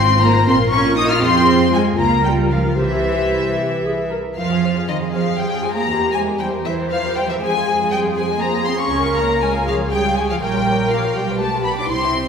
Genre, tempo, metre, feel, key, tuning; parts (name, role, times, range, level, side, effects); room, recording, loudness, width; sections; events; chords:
quick classical-period movement for string orchestra; 80 BPM (dotted quarters); 6/8; rubato; F minor; A4 = 439 Hz
warm symphonic violin section; melody; 0.0-12.3 s; Eb5 to F6; -22 LUFS; left 4 dB
warm symphonic violin section; second line; 0.0-12.3 s; E4 to F6; -24 LUFS; left 3 dB
dark symphonic viola section; accompaniment; 0.0-12.3 s; E4 to C5; -22 LUFS; equal
dark symphonic double bass section; bass; 0.0-12.3 s; Ab1 to F2; -23 LUFS; right 2 dB
warm symphonic cello section; bass; 0.0-12.3 s; Eb3 to F4; -21 LUFS; right 3 dB
wet scoring stage reverb, RT60 1.5 s; heard from further back in the room; -15 LUFS; side -6 dB against mid
0.0-4.4 A section; 4.4-12.3 B section
0.5 Bbm; 1.2 Fm; 2.0 Bbm/Db; 2.8 C; 4.4 Fm; 5.9 C7/E; 7.4 Fm; 8.9 Db; 10.4 Gm7b5/Bb; 11.2 G7/B